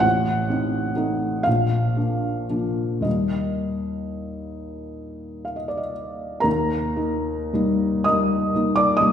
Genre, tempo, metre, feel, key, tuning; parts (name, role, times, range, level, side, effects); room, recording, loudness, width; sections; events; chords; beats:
classical, romantic nocturne for solo piano; 34-45 BPM (dotted quarters); 12/8; rubato; Eb major; A4 = 440 Hz
felt-muted upright piano; solo; 0.0-9.1 s; A1 to Eb6; -20 LUFS; equal
wet recital hall reverb, RT60 1.7 s; heard from further back in the room; -20 LUFS; side -8 dB against mid
0.0-6.4 A section; 6.4-9.1 A section
0.0 Adim7; 1.5 Bb; 3.1 Eb
| 0.04 1.46 3.05 4.78 | 6.45 8.09